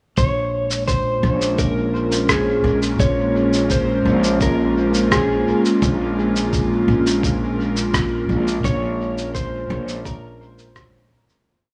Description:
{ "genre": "ambient dub", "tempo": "85 BPM", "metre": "4/4", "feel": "straight", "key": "Bb minor", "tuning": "A4 = 441 Hz", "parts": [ { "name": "electric slide guitar", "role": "melody", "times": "0.2-10.7 s", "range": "Ab4 to Db5", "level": "-26 LUFS", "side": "equal", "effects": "dub echo" }, { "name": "airy breathy pad", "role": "sustained chords", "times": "0.8-11.5 s", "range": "Ab3 to Bb4", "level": "-23 LUFS", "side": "equal", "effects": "chorus" }, { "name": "upright bass", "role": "bass", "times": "0.2-11.1 s", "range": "Bb1", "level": "-24 LUFS", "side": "equal", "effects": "none" }, { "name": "electronic kick drum", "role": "drums", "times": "0.2-10.9 s", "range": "none", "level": "-26 LUFS", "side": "equal", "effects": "none" }, { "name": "electronic shaker and rim click", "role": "drums", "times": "0.2-11.4 s", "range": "none", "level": "-27 LUFS", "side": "equal", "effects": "dub echo" } ], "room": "moderate echo chamber reverb, RT60 2.2 s", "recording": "small room ambience", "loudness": "-19 LUFS", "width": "mono", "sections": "0.2-11.5 groove", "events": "fade-out 7.7-11.5", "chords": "0.2 Bbm7" }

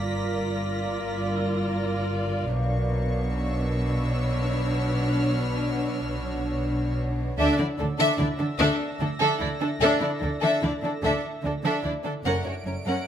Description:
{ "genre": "cinematic", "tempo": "74 BPM", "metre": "3/4", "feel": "straight", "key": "unclear", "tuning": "A4 = 439 Hz", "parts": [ { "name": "warm chamber violin section", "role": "melody", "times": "0.0-13.0 s", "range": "A4 to F#5", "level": "-32 LUFS", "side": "left 2 dB", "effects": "none" }, { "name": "warm chamber violin section", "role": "second line", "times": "0.0-13.0 s", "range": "C#4 to B4", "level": "-32 LUFS", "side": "left 1 dB", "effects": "none" }, { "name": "warm chamber viola section", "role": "accompaniment", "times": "0.0-13.1 s", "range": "C#4 to F4", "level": "-30 LUFS", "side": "right 1 dB", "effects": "none" }, { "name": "deep dark ambient pad", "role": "sustained chords", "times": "0.0-13.1 s", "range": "D4 to F#5", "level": "-34 LUFS", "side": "equal", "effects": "chorus, built-in reverb" }, { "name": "dark studio double bass section", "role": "bass", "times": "0.0-12.7 s", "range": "F#1 to D2", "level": "-30 LUFS", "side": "right 1 dB", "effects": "none" }, { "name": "warm chamber cello section", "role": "bass", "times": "0.0-12.9 s", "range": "F#2 to D3", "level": "-30 LUFS", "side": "equal", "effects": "none" }, { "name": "warm studio violin section", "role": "texture", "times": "0.0-13.1 s", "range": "C#5 to D7", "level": "-40 LUFS", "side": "left 1 dB", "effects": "none" } ], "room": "light reverb", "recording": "close, detailed microphones", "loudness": "-23 LUFS", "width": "side -9 dB against mid", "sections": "0.0-13.1 A section", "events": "none", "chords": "0.0 Gm7; 2.5 Bmadd9; 7.4 Dsus2; 12.2 F#" }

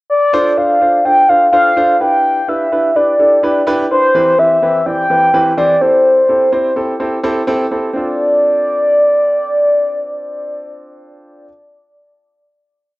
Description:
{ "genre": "dance-pop", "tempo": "126 BPM", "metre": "4/4", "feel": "straight", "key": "D dorian", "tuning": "A4 = 439 Hz", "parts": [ { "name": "mellow horn-like synth lead", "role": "melody", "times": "0.1-11.5 s", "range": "C5 to G5", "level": "-11 LUFS", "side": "equal", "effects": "chorus, cassette tape" }, { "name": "warm grand piano", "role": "accompaniment", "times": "0.3-11.5 s", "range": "E3 to D5", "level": "-18 LUFS", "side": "right 1 dB", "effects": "cassette tape" } ], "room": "wet spring reverb, RT60 2.6 s", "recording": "home recording on cassette", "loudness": "-10 LUFS", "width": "side -20 dB against mid", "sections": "0.0-0.3 pickup bar; 0.3-8.0 verse; 8.0-11.8 final chord", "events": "none", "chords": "0.3 Dm7; 2.0 Em7; 4.1 Cmaj7/E; 5.8 Am7; 8.0 Dm7" }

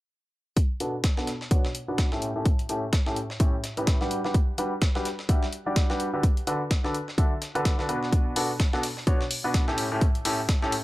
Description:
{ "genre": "piano house", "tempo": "127 BPM", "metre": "4/4", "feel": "swing 58% on 16ths", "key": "unclear", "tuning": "A4 = 438 Hz", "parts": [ { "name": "breakbeat sampler-style drum kit", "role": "drums", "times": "0.6-10.8 s", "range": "hi-hat, snare drum", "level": "-34 LUFS", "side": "equal", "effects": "high-pass filter on hats, high-pass filter on snare" }, { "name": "electronic kick drum", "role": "drums", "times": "0.6-10.6 s", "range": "none", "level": "-23 LUFS", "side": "equal", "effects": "none" }, { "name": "bright concert grand piano", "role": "riff", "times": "0.8-10.7 s", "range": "A2 to E5", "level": "-28 LUFS", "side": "equal", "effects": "sidechain pumping, low-pass filter" }, { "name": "electronic hi-hat", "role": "drums", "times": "8.4-10.8 s", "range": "none", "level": "-32 LUFS", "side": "left 2 dB", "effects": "none" } ], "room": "little or no reverb", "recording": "dry, gritty hardware recording", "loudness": "-23 LUFS", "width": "side -18 dB against mid", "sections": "0.6-10.8 A section", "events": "filter sweep on grand piano 0.6-10.8", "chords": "0.6 A7; 4.1 Gmaj7; 6.2 D6; 8.1 A7" }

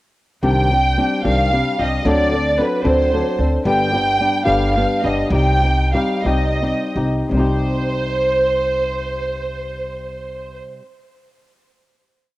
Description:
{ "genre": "mexican folk, mariachi", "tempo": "52-75 BPM (dotted quarters)", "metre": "6/8", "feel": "straight", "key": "C harmonic minor", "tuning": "A4 = 440 Hz", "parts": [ { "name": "flamenco guitar", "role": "accompaniment", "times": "0.4-10.9 s", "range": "G2 to A4", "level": "-20 LUFS", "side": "left 2 dB", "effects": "cassette tape" }, { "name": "upright bass", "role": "bass", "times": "0.4-10.6 s", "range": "G1 to D2", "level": "-21 LUFS", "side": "equal", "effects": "none" }, { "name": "warm symphonic violin section", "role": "melody", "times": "0.5-10.6 s", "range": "B4 to G5", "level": "-19 LUFS", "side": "right 1 dB", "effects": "cassette tape" } ], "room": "light reverb, small room ambience", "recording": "home recording on cassette", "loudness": "-15 LUFS", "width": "side -17 dB against mid", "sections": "0.4-7.3 A section; 7.3-11.9 final chord", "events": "slowing down 3.7-7.3", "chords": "0.4 Cmadd9; 2.1 D7; 3.7 G; 5.3 Cm" }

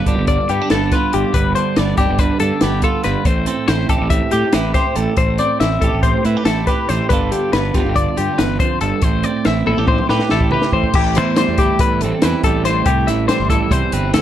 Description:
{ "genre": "math rock and midwest emo", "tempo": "281 BPM (eighths)", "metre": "9/8", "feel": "straight", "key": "A minor", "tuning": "A4 = 440 Hz", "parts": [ { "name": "twelve-string electric guitar", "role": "accompaniment", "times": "0.0-14.2 s", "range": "E2 to A4", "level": "-20 LUFS", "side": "right 8 dB", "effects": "none" }, { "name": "twelve-string electric guitar", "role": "arpeggios", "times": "0.0-14.2 s", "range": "G4 to E5", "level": "-19 LUFS", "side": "left 5 dB", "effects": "slapback echo" }, { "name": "fuzz fingered electric bass", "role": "bass", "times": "0.0-14.2 s", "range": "G1 to A2", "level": "-20 LUFS", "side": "equal", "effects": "overdrive" }, { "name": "compact cocktail drum kit", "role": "drums", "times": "0.1-14.2 s", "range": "crash cymbal, hi-hat, kick drum, snare drum, toms", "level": "-18 LUFS", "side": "equal", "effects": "none" } ], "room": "light reverb", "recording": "dark, warm production", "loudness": "-14 LUFS", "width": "side -11 dB against mid", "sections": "0.0-10.9 A section; 10.9-14.2 B section", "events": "drum fill 9.7-10.9", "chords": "0.0 G9; 3.3 Am9; 7.1 G9; 9.0 Am9; 10.9 Am7" }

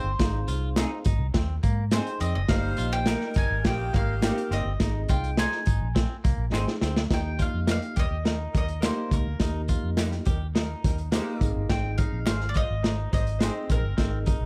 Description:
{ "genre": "uptempo 1960s-style soul", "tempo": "104 BPM", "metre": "4/4", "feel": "straight", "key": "Ab major", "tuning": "A4 = 440 Hz", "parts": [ { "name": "bowl-back mandolin", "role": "melody", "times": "0.0-14.5 s", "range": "Bb4 to Ab5", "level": "-36 LUFS", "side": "equal", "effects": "none" }, { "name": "clear saxophone section", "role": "second line", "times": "0.0-13.8 s", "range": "Eb3 to C5", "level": "-39 LUFS", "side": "equal", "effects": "none" }, { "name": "mellow tine electric piano", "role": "accompaniment", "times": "0.0-14.5 s", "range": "Bb3 to F5", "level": "-37 LUFS", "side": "equal", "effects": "none" }, { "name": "clean electric guitar", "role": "riff", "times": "0.0-14.5 s", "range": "Bb3 to G4", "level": "-42 LUFS", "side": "equal", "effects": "none" }, { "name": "vintage muted fingered electric bass", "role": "bass", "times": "0.0-14.5 s", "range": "Gb1 to Ab2", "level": "-31 LUFS", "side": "equal", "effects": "none" }, { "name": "crunchy breakbeat drum kit", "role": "drums", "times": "0.2-14.4 s", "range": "hi-hat, kick drum, snare drum", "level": "-28 LUFS", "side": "equal", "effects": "none" }, { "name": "tambourine and handclaps", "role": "percussion", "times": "0.2-14.4 s", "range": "none", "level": "-44 LUFS", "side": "equal", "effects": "none" }, { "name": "electric guitar through a small old amp", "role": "stabs", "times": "0.8-13.5 s", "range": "Bb3 to C5", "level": "-40 LUFS", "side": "equal", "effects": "analog chorus" } ], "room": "little or no reverb", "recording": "dark, warm production", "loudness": "-26 LUFS", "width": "mono", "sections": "0.0-7.1 A section; 7.1-14.5 B section", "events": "drum fill 6.5-7.1", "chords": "0.0 Ab; 2.5 Eb/G; 4.8 Ab; 7.1 Eb; 11.4 Ab" }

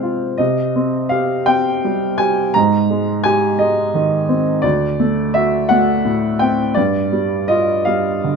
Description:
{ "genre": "classical, romantic nocturne for solo piano", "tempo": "56 BPM (dotted quarters)", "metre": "12/8", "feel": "rubato", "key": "C minor", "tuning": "A4 = 438 Hz", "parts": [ { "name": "warm baby grand piano", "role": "solo", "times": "0.0-8.4 s", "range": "D2 to Bb5", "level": "-14 LUFS", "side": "equal", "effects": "none" } ], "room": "light reverb", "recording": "close, detailed microphones", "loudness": "-14 LUFS", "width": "side -5 dB against mid", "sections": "0.0-8.4 A section", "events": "none", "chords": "0.4 Cm; 2.6 Abmaj7; 4.6 D7; 6.8 G7(no3)" }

